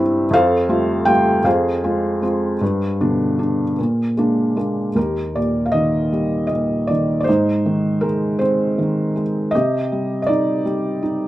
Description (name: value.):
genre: classical, lyrical solo piano.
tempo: 52 BPM (dotted quarters).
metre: 6/8.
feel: rubato.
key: Eb major from 5.0 s.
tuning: A4 = 440 Hz.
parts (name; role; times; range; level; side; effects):
felt-muted upright piano; solo; 0.0-11.3 s; Eb2 to G5; -16 LUFS; equal; none.
room: light reverb.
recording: minimal, uncompressed stereo recording.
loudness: -16 LUFS.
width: side -15 dB against mid.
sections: 0.0-5.0 A section; 5.0-11.3 B section.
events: none.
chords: 0.3 Fadd9; 1.5 Fm; 2.6 G; 3.8 Bb7; 5.0 Eb; 7.3 Ab; 9.5 Cm.